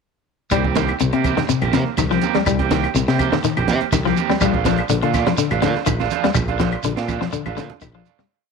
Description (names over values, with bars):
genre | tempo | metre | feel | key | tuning
afrobeat | 123 BPM | 4/4 | straight | C dorian | A4 = 440 Hz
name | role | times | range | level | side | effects
electric guitar at the edge of break-up | arpeggios | 0.5-8.2 s | C3 to G3 | -21 LUFS | left 13 dB | spring reverb
electric guitar at the edge of break-up | stabs | 0.5-8.2 s | Eb3 to G4 | -23 LUFS | right 14 dB | tape echo
modern bright fingered electric bass | bass | 0.5-8.2 s | A1 to C3 | -23 LUFS | equal | none
compact cocktail drum kit | drums | 0.5-8.3 s | hi-hat, kick drum, snare drum | -25 LUFS | right 5 dB | none
claves | percussion | 0.5-7.9 s | none | -31 LUFS | left 14 dB | none
congas | percussion | 0.5-8.3 s | none | -27 LUFS | right 9 dB | none
shekere | percussion | 0.5-8.2 s | none | -28 LUFS | right 8 dB | none
room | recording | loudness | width
light reverb, small room ambience | 1960s-style stereo with parts hard left and right | -16 LUFS | side -5 dB against mid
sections
0.5-8.3 groove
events
fade-out 6.4-8.3; drum fill 7.3-8.3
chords
0.5 Cm7; 4.4 Bbmaj7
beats
| 0.52 1.00 1.49 1.98 | 2.46 2.95 3.44 3.92 | 4.41 4.89 5.38 5.87 | 6.36 6.84 7.33 7.81